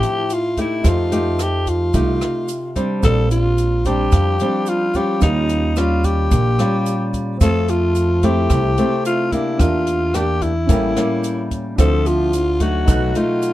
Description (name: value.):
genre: bossa nova.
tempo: 110 BPM.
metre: 4/4.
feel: straight.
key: unclear.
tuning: A4 = 440 Hz.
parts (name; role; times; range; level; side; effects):
growling alto saxophone; melody; 0.0-13.5 s; Eb4 to A4; -20 LUFS; left 1 dB; none.
clear baby grand piano; accompaniment; 0.0-13.5 s; C4 to F#6; -29 LUFS; right 1 dB; none.
nylon-string guitar; accompaniment; 0.0-13.5 s; A2 to G4; -22 LUFS; equal; none.
compact cocktail drum kit; drums; 0.0-13.5 s; hi-hat, kick drum, rim click; -20 LUFS; equal; none.
tube shaker; percussion; 0.0-13.5 s; none; -38 LUFS; right 9 dB; none.
upright bass; bass; 0.8-13.1 s; A1 to F2; -19 LUFS; right 1 dB; none.
room: light reverb.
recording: dark, warm production.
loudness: -15 LUFS.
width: side -15 dB against mid.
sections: 0.0-13.5 A section.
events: none.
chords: 0.0 Dm9; 0.8 F9; 3.0 Bb69; 5.2 Eb9; 7.4 Fmaj7; 9.6 Em7b5; 10.7 A7b9; 11.8 Dm9; 12.9 B7.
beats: 0.30 | 0.84 1.39 1.94 2.48 | 3.03 3.58 4.13 4.67 | 5.22 5.77 6.31 6.86 | 7.41 7.96 8.50 9.05 | 9.60 10.14 10.69 11.24 | 11.79 12.33 12.88 13.43.